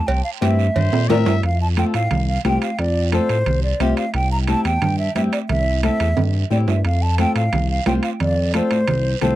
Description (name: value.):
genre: latin, cumbia.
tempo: 177 BPM.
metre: 4/4.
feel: straight.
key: F major.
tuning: A4 = 438 Hz.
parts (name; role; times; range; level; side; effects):
breathy mellow silver concert flute; melody; 0.0-9.4 s; C5 to Bb5; -23 LUFS; right 1 dB; tape echo.
smooth synth bass; bass; 0.1-9.4 s; C2 to Bb2; -20 LUFS; equal; none.
congas; percussion; 0.1-9.4 s; none; -24 LUFS; right 2 dB; none.
cowbell and timbales; percussion; 0.1-9.4 s; none; -26 LUFS; right 6 dB; none.
guiro; percussion; 0.1-9.4 s; none; -34 LUFS; right 25 dB; none.
flamenco guitar; accompaniment; 0.4-9.4 s; C4 to C5; -24 LUFS; left 10 dB; none.
growling trumpet; second line; 0.8-1.4 s; C5 to E5; -28 LUFS; left 8 dB; none.
room: little or no reverb.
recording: dry, close 1970s-style studio recording.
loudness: -16 LUFS.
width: side -14 dB against mid.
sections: 0.0-1.4 A section; 1.4-9.4 B section.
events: drum fill 0.9-1.4, 6.2-6.9.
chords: 0.0 C7; 1.4 F; 4.1 C; 6.9 F.